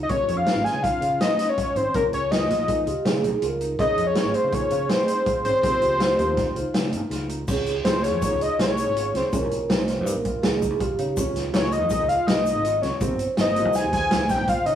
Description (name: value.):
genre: progressive instrumental, band music in an uneven meter.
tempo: 163 BPM.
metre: 5/4.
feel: straight.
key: Db lydian.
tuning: A4 = 440 Hz.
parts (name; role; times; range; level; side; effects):
fat analog lead; melody; 0.0-14.8 s; Bb4 to Ab5; -22 LUFS; left 2 dB; none.
fingered electric bass; bass; 0.0-14.8 s; G1 to Db3; -30 LUFS; equal; none.
vibraphone with soft mallets; second line; 0.1-14.6 s; Db4 to C5; -29 LUFS; right 6 dB; none.
dark grand piano; accompaniment; 0.1-13.7 s; F3 to Ab4; -34 LUFS; left 4 dB; none.
warm baby grand piano; arpeggios; 0.1-14.8 s; C4 to F4; -34 LUFS; right 1 dB; digital delay.
vintage drum kit; drums; 0.1-14.7 s; crash cymbal, hi-hat, kick drum, snare drum; -26 LUFS; equal; none.
egg shaker; percussion; 7.5-14.5 s; none; -41 LUFS; left 4 dB; none.
room: moderate stone room reverb, RT60 1.2 s.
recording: rough rehearsal-room recording, warm saturation, studio ambience.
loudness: -20 LUFS.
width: side -10 dB against mid.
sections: 0.0-7.5 A section; 7.5-14.8 B section.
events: analog synth lead solo 7.5-14.8.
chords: 0.1 Db; 1.9 Ebsus4; 3.8 Dbmaj7; 5.6 Eb13; 7.5 Dbmaj7; 9.3 Ebsus4; 11.2 Dbmaj7; 13.0 Abmaj7.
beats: | 0.10 0.47 0.84 1.21 1.58 | 1.95 2.31 2.68 3.05 3.42 | 3.79 4.16 4.53 4.90 5.26 | 5.63 6.00 6.37 6.74 7.11 | 7.48 7.85 8.22 8.59 8.96 | 9.33 9.70 10.07 10.44 10.80 | 11.17 11.54 11.91 12.28 12.65 | 13.01 13.38 13.75 14.12 14.48.